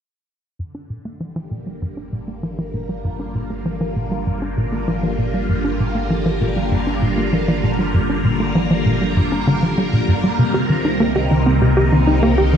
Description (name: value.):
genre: ambient, sequencer-driven space music.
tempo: 98 BPM.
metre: 4/4.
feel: straight.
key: G minor.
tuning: A4 = 440 Hz.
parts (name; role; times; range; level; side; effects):
phased string machine; sustained chords; 0.6-12.6 s; C3 to Bb4; -21 LUFS; equal; ensemble chorus, phaser.
tight sequencer bass; riff; 0.6-12.6 s; G2 to G4; -19 LUFS; equal; tape echo.
round analog bass; bass; 0.6-12.6 s; G1 to C2; -25 LUFS; equal; none.
room: wet concert hall reverb, RT60 2.5 s.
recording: dark, warm production.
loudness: -16 LUFS.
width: side -8 dB against mid.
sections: 0.6-12.6 A section.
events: fade-in on analog synth bass 0.6-12.6; fade-in on string machine 0.6-12.6.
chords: 0.6 Gm7; 10.4 Cm7.